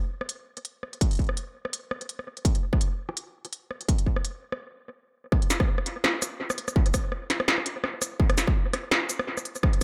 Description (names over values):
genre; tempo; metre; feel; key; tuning
drum and bass; 167 BPM; 4/4; swing 55% on 16ths, half-time; none; none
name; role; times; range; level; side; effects
industrial drum kit; drums; 0.2-9.8 s; hi-hat, rim click, shaker, snare drum; -30 LUFS; equal; studio reverb, analog delay
electronic kick drum; drums; 1.0-9.8 s; none; -26 LUFS; equal; distortion, studio reverb
room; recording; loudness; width
light reverb, digital ambience; echo-heavy mix; -27 LUFS; mono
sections
0.0-5.3 A section; 5.3-9.8 B section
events
stop 4.6-5.3; drop 5.3-9.8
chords
none